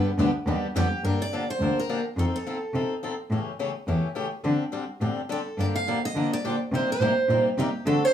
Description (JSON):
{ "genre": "acoustic string swing (jazz manouche)", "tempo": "211 BPM", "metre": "4/4", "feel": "swing 57% on 8ths", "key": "G minor", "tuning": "A4 = 440 Hz", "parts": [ { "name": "picked steel-string acoustic guitar", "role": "melody", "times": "0.0-2.9, 5.3-8.1 s", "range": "G4 to F5", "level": "-27 LUFS", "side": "right 2 dB", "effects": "plate reverb" }, { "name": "picked steel-string acoustic guitar", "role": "accompaniment", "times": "0.0-0.9, 5.6-8.1 s", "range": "C3 to A4", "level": "-31 LUFS", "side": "right 5 dB", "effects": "none" }, { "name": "picked swing-style acoustic guitar", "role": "accompaniment", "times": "0.0-8.1 s", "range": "C3 to A4", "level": "-29 LUFS", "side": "left 4 dB", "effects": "none" }, { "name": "warm cello", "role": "bass", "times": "0.2-7.9 s", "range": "D2 to D3", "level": "-26 LUFS", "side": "equal", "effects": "none" } ], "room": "moderate studio reverb, RT60 0.6 s", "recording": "small room ambience", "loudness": "-24 LUFS", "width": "side -10 dB against mid", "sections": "0.0-1.0 A section; 1.0-8.1 B section", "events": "steel-string acoustic guitar solo 0.0-1.0", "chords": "0.0 G; 1.0 Gm7; 2.2 F7; 3.3 A7; 4.4 D7sus4; 5.6 Gm7; 6.7 Cm7" }